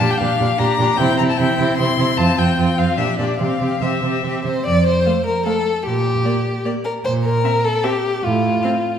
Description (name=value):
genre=quick classical-period movement for string quartet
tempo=151 BPM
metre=3/4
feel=rubato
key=F major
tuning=A4 = 440 Hz
part: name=warm violin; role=melody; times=0.0-8.7 s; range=D5 to C6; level=-22 LUFS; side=left 6 dB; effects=none
part: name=rich violin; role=second line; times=0.0-9.0 s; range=E4 to D5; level=-20 LUFS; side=left 2 dB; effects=none
part: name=rich viola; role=accompaniment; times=0.0-8.7 s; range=A3 to D4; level=-24 LUFS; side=right 3 dB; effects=none
part: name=warm cello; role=bass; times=0.0-8.6 s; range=F2 to C3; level=-20 LUFS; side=right 3 dB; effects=none
room=wet recital hall reverb, RT60 1.6 s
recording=heard from further back in the room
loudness=-16 LUFS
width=side -8 dB against mid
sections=0.0-4.7 A section; 4.7-9.0 B section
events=none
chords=0.0 Gm/Bb; 1.0 C; 2.2 F5; 3.0 Gm; 3.4 C; 4.7 F; 5.9 Gm/Bb; 7.1 C7(no3)/Bb; 8.2 F/A